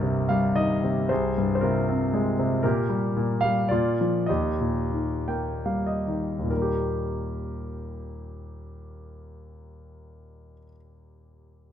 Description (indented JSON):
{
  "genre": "classical, lyrical solo piano",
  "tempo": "69-119 BPM",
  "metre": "3/4",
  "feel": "rubato",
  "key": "Eb major",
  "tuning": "A4 = 440 Hz",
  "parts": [
    { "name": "clear concert grand piano", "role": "solo", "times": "0.0-11.7 s", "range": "C2 to G5", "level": "-24 LUFS", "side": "equal", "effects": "none" }
  ],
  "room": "little or no reverb",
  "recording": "close, detailed microphones",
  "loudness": "-23 LUFS",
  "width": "side -9 dB against mid",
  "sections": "0.0-6.5 A section; 6.5-11.6 B section",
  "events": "slowing down 2.6-6.5; grand piano fill 4.9-6.5",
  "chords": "0.0 Cm7; 1.1 Fmadd9/C; 2.6 Gm7/Bb; 3.7 Bb; 4.3 Eb",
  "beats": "0.02 0.56 | 1.10 1.62 2.13 | 2.64 3.16 3.71 | 4.29 4.92 5.66 | 6.51 7.36 8.20 | 9.04 9.89 10.75"
}